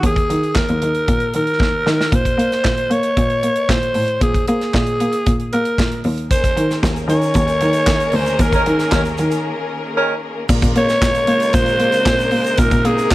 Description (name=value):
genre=disco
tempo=115 BPM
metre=4/4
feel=straight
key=Bb minor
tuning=A4 = 440 Hz
part: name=breathy alto saxophone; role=melody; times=0.0-13.1 s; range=F4 to Db5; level=-19 LUFS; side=equal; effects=tape echo
part: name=warm cello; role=bass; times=0.0-13.1 s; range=D2 to Bb3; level=-19 LUFS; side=equal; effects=none
part: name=modern studio drum kit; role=drums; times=0.0-13.1 s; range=crash cymbal, handclaps, hi-hat, kick drum, snare drum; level=-19 LUFS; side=equal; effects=none
part: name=clear symphonic string section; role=sustained chords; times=6.3-13.1 s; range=C3 to Bb4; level=-24 LUFS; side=left 2 dB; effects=none
part: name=tube shaker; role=percussion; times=6.3-13.1 s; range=none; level=-37 LUFS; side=right 4 dB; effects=none
part: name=mellow horn section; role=stabs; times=8.5-10.1 s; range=Eb3 to Bb4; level=-19 LUFS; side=right 1 dB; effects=none
room=studio ambience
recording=none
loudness=-14 LUFS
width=side -17 dB against mid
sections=0.0-2.1 A section; 2.1-10.5 B section; 10.5-13.1 C section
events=drum fill 1.6-2.1; band accent 8.4-10.5; break 9.4-10.5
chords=0.0 Ebsus4; 2.1 Bbm9; 6.0 Eb7sus4; 10.5 Bbm9